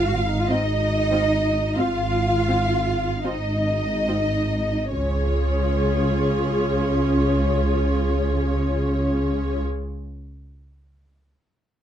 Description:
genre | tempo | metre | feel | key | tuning
classical, slow romantic movement for string orchestra | 34-50 BPM | 4/4 | rubato | Db major | A4 = 440 Hz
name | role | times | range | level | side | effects
warm studio violin section | melody | 0.0-9.6 s | Db5 to F5 | -29 LUFS | left 2 dB | none
warm studio violin section | second line | 0.0-9.6 s | Db5 to F5 | -29 LUFS | left 1 dB | none
dark symphonic cello section | bass | 0.0-9.6 s | Db4 to Gb4 | -26 LUFS | right 1 dB | none
warm studio double bass section | bass | 0.0-9.6 s | Ab1 to Db2 | -24 LUFS | right 1 dB | none
warm studio viola section | accompaniment | 0.5-9.6 s | C4 to Ab4 | -27 LUFS | right 1 dB | none
room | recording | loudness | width
light reverb | dark, warm production | -20 LUFS | side -10 dB against mid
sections
0.0-4.9 A section; 4.9-11.2 B section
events
slowing down 0.0-4.9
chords
0.0 Ab5; 4.9 Db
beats
0.49 1.78 3.24 | 4.92 6.49 8.05 9.61

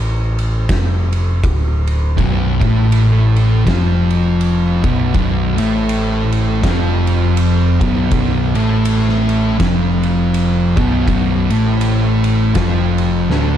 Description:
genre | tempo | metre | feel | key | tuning
stoner and doom metal | 81 BPM | 4/4 | swing 59% on 8ths | unclear | A4 = 440 Hz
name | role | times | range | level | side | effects
overdriven picked electric bass | bass | 0.0-13.6 s | B0 to A1 | -17 LUFS | equal | none
oversized low-tuned drum kit | drums | 0.4-13.5 s | kick drum, ride cymbal, snare drum | -21 LUFS | equal | none
thick fuzz guitar | riff | 2.2-13.6 s | B1 to A3 | -18 LUFS | left 7 dB | distortion
thick fuzz guitar | riff | 2.2-13.6 s | B1 to A3 | -18 LUFS | right 7 dB | distortion
room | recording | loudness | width
little or no reverb | dark, warm production | -13 LUFS | side -10 dB against mid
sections
0.0-13.6 A section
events
drum fill 13.3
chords
0.0 Bm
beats
0.69 1.43 | 2.17 2.92 3.66 4.40 | 5.14 5.89 6.63 7.37 | 8.12 8.86 9.60 10.34 | 11.08 11.82 12.56 13.30

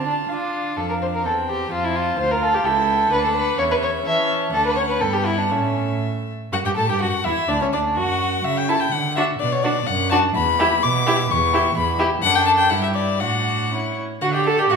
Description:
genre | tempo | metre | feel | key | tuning
quick classical-period movement for string quartet | 126 BPM | 2/4 | rubato | D major | A4 = 441 Hz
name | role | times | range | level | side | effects
warm violin | melody | 0.0-14.8 s | C#5 to D6 | -23 LUFS | left 6 dB | none
dark violin | second line | 0.0-14.8 s | C#4 to F#5 | -22 LUFS | equal | none
rich viola | accompaniment | 0.0-14.8 s | A3 to A4 | -25 LUFS | right 3 dB | none
dark cello | bass | 0.0-14.8 s | C#2 to D4 | -25 LUFS | right 3 dB | none
room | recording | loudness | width
wet recital hall reverb, RT60 1.4 s | recorded in a church or concert hall | -18 LUFS | side -5 dB against mid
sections
0.0-6.5 A section; 6.5-14.2 B section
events
none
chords
0.0 Dm; 0.8 F6; 1.2 C/E; 1.7 F; 2.7 A7/C#; 3.1 D; 3.6 A/E; 4.5 D; 5.0 G; 5.5 A; 6.5 Gsus2; 7.0 Esus2; 7.5 Dmaj7/C#; 8.5 A/C#; 8.9 D; 9.4 Bm; 10.3 Em; 11.3 C#dim/E; 12.2 D/F#; 12.7 Em7/G; 13.2 D/A; 13.7 A; 14.2 D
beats
0.29 | 0.77 1.25 | 1.71 2.18 | 2.65 3.12 | 3.59 4.05 | 4.53 5.01 | 5.51 6.02 | 6.52 7.01 | 7.49 7.97 | 8.45 8.92 | 9.40 9.87 | 10.35 10.82 | 11.30 11.76 | 12.22 12.71 | 13.21 13.72 | 14.22 14.71

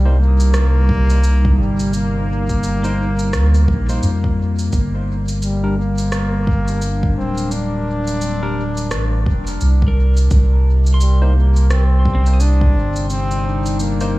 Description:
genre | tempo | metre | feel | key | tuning
ambient dub | 86 BPM | 4/4 | swing 60% on 16ths | unclear | A4 = 442 Hz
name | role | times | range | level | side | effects
warm trombone | melody | 0.0-14.2 s | G3 to D4 | -25 LUFS | left 1 dB | dub echo
warbly tape-like pad | sustained chords | 0.0-14.2 s | C3 to Eb4 | -24 LUFS | left 1 dB | chorus, built-in reverb
pedal steel guitar | arpeggios | 0.0-5.6, 9.9-14.2 s | Bb3 to Eb6 | -32 LUFS | right 1 dB | dub echo
soft dub sub bass | bass | 0.0-14.2 s | D1 to F2 | -15 LUFS | equal | tube saturation
barky tine electric piano | stabs | 0.1-14.2 s | G3 to C5 | -32 LUFS | left 1 dB | none
electronic cabasa and rim click | drums | 0.4-14.1 s | none | -29 LUFS | equal | none
electronic kick drum | drums | 0.9-12.7 s | none | -19 LUFS | equal | none
room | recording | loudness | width
digital ambience | studio reverb | -14 LUFS | side -19 dB against mid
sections
0.0-14.2 A section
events
none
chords
0.0 Cm7; 4.7 Gm; 10.3 Cm7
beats
0.54 1.24 | 1.94 2.63 3.33 4.03 | 4.73 5.42 6.12 6.82 | 7.52 8.22 8.91 9.61 | 10.31 11.01 11.71 12.40 | 13.10 13.80

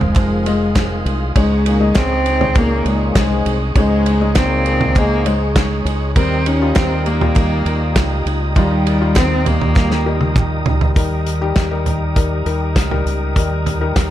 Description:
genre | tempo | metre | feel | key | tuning
piano-driven pop | 100 BPM | 4/4 | straight | unclear | A4 = 440 Hz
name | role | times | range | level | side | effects
dark cello | melody | 0.0-10.4 s | G3 to Db4 | -19 LUFS | equal | none
felt-muted upright piano | accompaniment | 0.0-14.1 s | Db3 to Eb5 | -23 LUFS | left 6 dB | none
tonewheel organ | sustained chords | 0.0-14.1 s | G4 to Eb6 | -27 LUFS | right 1 dB | chorus vibrato, stopped rotary speaker
fingerpicked steel-string acoustic guitar | riff | 0.0-11.0 s | Eb3 to Eb5 | -27 LUFS | right 4 dB | none
fingered electric bass | bass | 0.0-14.1 s | F1 to Eb2 | -19 LUFS | equal | none
loose indie drum kit | drums | 0.0-14.1 s | hi-hat, kick drum, ride cymbal, snare drum, toms | -18 LUFS | right 1 dB | none
group handclap | percussion | 0.2-10.5 s | none | -33 LUFS | right 5 dB | none
warm French horn section | second line | 1.4-5.5 s | Ab2 to C4 | -23 LUFS | left 3 dB | none
room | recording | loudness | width
light reverb, small room ambience | dark, warm production | -14 LUFS | side -12 dB against mid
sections
0.0-11.0 A section; 11.0-14.1 B section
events
drum fill 9.8-11.0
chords
0.0 Fm7; 1.4 Dbsus2; 6.2 Eb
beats
0.16 0.76 | 1.36 1.96 2.56 3.16 | 3.76 4.36 4.96 5.56 | 6.16 6.76 7.36 7.96 | 8.56 9.16 9.76 10.36 | 10.96 11.56 12.16 12.76 | 13.36 13.96

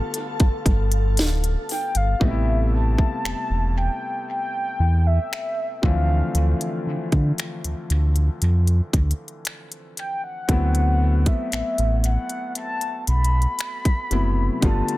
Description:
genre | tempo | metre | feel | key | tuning
contemporary R&B | 58 BPM | 4/4 | straight | unclear | A4 = 442 Hz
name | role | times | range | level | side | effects
mellow horn-like synth lead | melody | 0.0-15.0 s | E5 to B5 | -28 LUFS | equal | chorus, dub echo
clear concert grand piano | accompaniment | 0.0-15.0 s | C3 to F4 | -29 LUFS | left 2 dB | dub echo
glassy FM pad | sustained chords | 0.0-2.2 s | A4 to A5 | -33 LUFS | left 3 dB | ensemble chorus, built-in reverb
trap drum kit | drums | 0.1-15.0 s | finger snaps, hi-hat, kick drum, snare drum | -22 LUFS | equal | none
sub bass with octave | bass | 0.4-14.8 s | D1 to D3 | -19 LUFS | equal | none
room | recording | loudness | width
digital ambience | echo-heavy mix | -20 LUFS | side -17 dB against mid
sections
0.0-2.2 A section; 2.2-15.0 B section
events
none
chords
0.0 G9; 2.2 Am9; 5.8 Dm7; 10.5 D13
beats
0.14 1.18 | 2.21 3.25 4.28 5.31 | 6.35 7.38 8.42 9.45 | 10.49 11.52 12.55 13.59 | 14.62

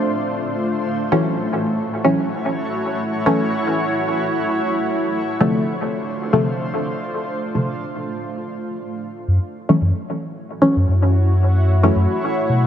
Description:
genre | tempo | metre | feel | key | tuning
dub techno | 112 BPM | 4/4 | swing 55% on 16ths | F# minor | A4 = 440 Hz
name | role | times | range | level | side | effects
granular cloud pad | sustained chords | 0.0-12.7 s | A3 to C#5 | -22 LUFS | equal | built-in reverb
filtered dub chord stab | stabs | 1.1-12.0 s | C3 to C#4 | -20 LUFS | equal | chorus, phaser, dub echo
warm sub bass | bass | 9.3-12.7 s | F#2 to B2 | -15 LUFS | equal | none
room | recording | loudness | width
moderate lush hall reverb, RT60 2.9 s | none | -17 LUFS | side -9 dB against mid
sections
0.0-9.3 A section; 9.3-12.7 B section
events
break 8.2-9.3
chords
0.0 Dm7; 0.7 F#m7; 5.0 Dm7; 9.3 F#m7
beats
0.17 | 0.70 1.24 1.78 2.31 | 2.85 3.38 3.92 4.46 | 4.99 5.53 6.06 6.60 | 7.13 7.67 8.21 8.74 | 9.28 9.81 10.35 10.88 | 11.42 11.96 12.49

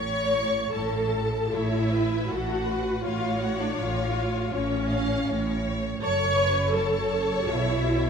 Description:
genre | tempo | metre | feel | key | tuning
classical, slow romantic movement for string orchestra | 72-85 BPM | 4/4 | rubato | A major | A4 = 445 Hz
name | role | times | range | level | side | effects
rich symphonic violin section | melody | 0.0-8.1 s | C#5 to C#6 | -35 LUFS | left 4 dB | none
warm symphonic viola section | accompaniment | 0.0-8.1 s | C#4 to C#5 | -26 LUFS | equal | none
rich symphonic cello section | bass | 0.0-8.1 s | F#2 to B2 | -32 LUFS | right 2 dB | none
warm studio double bass section | bass | 0.0-8.1 s | F#1 to B1 | -31 LUFS | right 1 dB | none
warm symphonic violin section | second line | 1.5-8.1 s | A4 to F5 | -33 LUFS | left 2 dB | none
room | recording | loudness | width
wet scoring stage reverb, RT60 2.0 s | none | -23 LUFS | side -6 dB against mid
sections
0.0-8.1 A section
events
none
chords
0.0 A; 6.0 F#m; 7.5 N.C.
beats
0.73 1.53 2.30 | 3.05 3.79 4.53 5.28 | 6.03 6.74 7.49

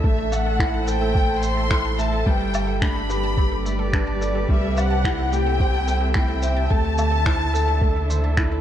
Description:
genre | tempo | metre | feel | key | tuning
piano and strings electronica | 108 BPM | 4/4 | straight | A dorian | A4 = 440 Hz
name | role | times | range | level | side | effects
dark symphonic violin section | melody | 0.0-8.4 s | E5 to C6 | -26 LUFS | left 2 dB | tape echo, shimmer reverb
dark string quartet | sustained chords | 0.0-8.6 s | C3 to E5 | -30 LUFS | right 1 dB | sidechain pumping, shimmer reverb
analog pluck | arpeggios | 0.0-8.6 s | A3 to A5 | -33 LUFS | right 3 dB | chorus, sidechain pumping, tape echo, shimmer reverb
felt-muted upright piano | riff | 0.0-8.6 s | G3 to E5 | -27 LUFS | equal | tape echo, shimmer reverb
warm sub bass | bass | 0.0-8.6 s | G1 to D2 | -24 LUFS | equal | sidechain pumping
electronic kick drum | drums | 0.0-8.5 s | none | -21 LUFS | equal | overdrive
woodblock, shaker and finger snaps | drums | 0.3-8.5 s | none | -31 LUFS | equal | none
room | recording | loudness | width
moderate plate reverb, RT60 2.2 s | dreamy mix soaked in reverb | -19 LUFS | side -10 dB against mid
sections
0.0-8.6 A section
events
none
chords
0.0 Am; 2.3 G; 4.5 C; 6.7 Dsus2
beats
| 0.04 0.60 1.16 1.71 | 2.27 2.82 3.38 3.93 | 4.49 5.04 5.60 6.16 | 6.71 7.27 7.82 8.38

